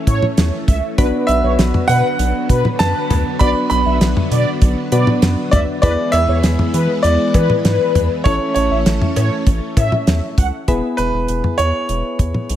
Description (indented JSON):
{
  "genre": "synth-pop",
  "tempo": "99 BPM",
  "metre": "4/4",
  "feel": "straight",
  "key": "unclear",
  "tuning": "A4 = 441 Hz",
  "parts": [
    { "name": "bright grand piano", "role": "melody", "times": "0.0-12.6 s", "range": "B4 to B5", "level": "-20 LUFS", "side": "right 2 dB", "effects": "tape echo" },
    { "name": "soft electric-piano-like synth keys", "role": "accompaniment", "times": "0.0-12.6 s", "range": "A3 to C#5", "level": "-23 LUFS", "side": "left 2 dB", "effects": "chorus" },
    { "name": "string machine, violins", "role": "sustained chords", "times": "0.0-10.7 s", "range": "D3 to C#4", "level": "-24 LUFS", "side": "equal", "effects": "ensemble chorus" },
    { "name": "mellow synth brass", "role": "second line", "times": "0.1-10.5 s", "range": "B4 to F#5", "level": "-23 LUFS", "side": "left 2 dB", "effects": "chorus, phaser, tape echo" },
    { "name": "rubbery square bass", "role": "bass", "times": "0.1-12.6 s", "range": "E1 to E3", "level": "-18 LUFS", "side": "equal", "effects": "none" },
    { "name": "damped 70s drum kit", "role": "drums", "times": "0.1-12.6 s", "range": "cowbell, hi-hat, kick drum, snare drum, toms", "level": "-16 LUFS", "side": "equal", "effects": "none" }
  ],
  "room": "light reverb",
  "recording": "none",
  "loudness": "-13 LUFS",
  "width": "side -11 dB against mid",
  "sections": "0.0-10.7 A section; 10.7-12.6 B section",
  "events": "none",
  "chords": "0.0 A; 1.0 Bm; 5.8 E; 8.3 A; 10.7 E",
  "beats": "0.38 | 0.98 1.59 2.19 2.80 | 3.41 4.01 4.62 5.22 | 5.83 6.44 7.04 7.65 | 8.26 8.86 9.47 10.07 | 10.68 11.29 11.89 12.50"
}